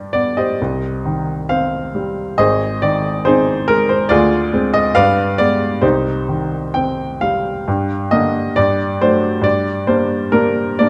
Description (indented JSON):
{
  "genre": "classical, romantic character piece for solo piano",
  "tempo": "62-72 BPM",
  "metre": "2/4",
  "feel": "rubato",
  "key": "C minor, G minor from 7.7 s",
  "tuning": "A4 = 440 Hz",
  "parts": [
    { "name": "clear baby grand piano", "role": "solo", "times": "0.0-10.9 s", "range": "Ab1 to G5", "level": "-16 LUFS", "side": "equal", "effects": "none" }
  ],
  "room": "moderate recital hall reverb, RT60 1.3 s",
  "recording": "dark, warm production",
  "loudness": "-17 LUFS",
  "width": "mono",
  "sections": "0.0-7.7 A section; 7.7-10.9 B section",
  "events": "none",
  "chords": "0.0 G; 0.6 Cm; 2.4 Ab; 4.1 Dm7b5; 4.9 G7b9; 5.8 Cm; 7.7 Gm; 8.6 D/G; 9.4 Gm",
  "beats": "| 0.59 1.48 | 2.38 3.25 | 4.09 4.94 | 5.83 6.74 | 7.67 8.56 | 9.44 10.31"
}